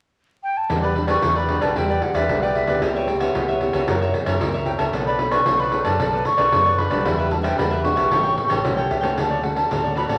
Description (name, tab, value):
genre	samba and choro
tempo	113 BPM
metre	4/4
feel	straight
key	unclear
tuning	A4 = 440 Hz
part	wooden flute	melody	0.4-10.2 s	C#5 to C#6	-24 LUFS	equal	none
part	cavaquinho	accompaniment	0.7-10.2 s	D4 to G5	-27 LUFS	equal	none
part	nylon-string guitar	accompaniment	0.7-10.2 s	A2 to C#5	-29 LUFS	equal	none
part	deep dub fingered electric bass	bass	0.7-10.2 s	A1 to F#2	-30 LUFS	equal	none
part	pandeiro	percussion	0.7-10.2 s	none	-27 LUFS	equal	none
room	wet large studio reverb, RT60 1.3 s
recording	vinyl crackle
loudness	-20 LUFS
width	mono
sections	0.7-9.2 A section; 9.2-10.2 B section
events	none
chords	0.0 N.C.; 0.7 Em9; 2.8 C#m7b5; 3.9 F#7; 4.9 Bm9; 7.1 Em9; 8.1 A13; 9.2 Dmaj7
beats	0.17 | 0.70 1.23 1.76 2.29 | 2.82 3.35 3.88 4.41 | 4.94 5.47 6.00 6.53 | 7.06 7.59 8.12 8.65 | 9.18 9.71